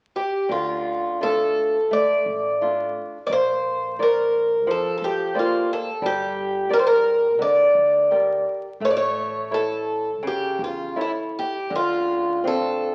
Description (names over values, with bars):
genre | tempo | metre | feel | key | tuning
fado-style ballad | 86 BPM | 4/4 | uneven beats, rubato | D minor | A4 = 438 Hz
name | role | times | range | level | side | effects
picked twelve-string acoustic guitar | melody | 0.2-12.9 s | E4 to D5 | -23 LUFS | equal | none
flamenco guitar | accompaniment | 0.5-12.9 s | C#3 to D5 | -30 LUFS | equal | none
upright bass | bass | 0.5-12.9 s | G1 to F2 | -47 LUFS | equal | none
room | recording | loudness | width
moderate large studio reverb, RT60 1.2 s | very old 78 rpm record, vinyl crackle | -22 LUFS | mono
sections
0.5-12.9 A section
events
none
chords
0.5 Dm; 3.3 Bbadd9; 6.0 Gm; 8.8 A; 11.7 Dm7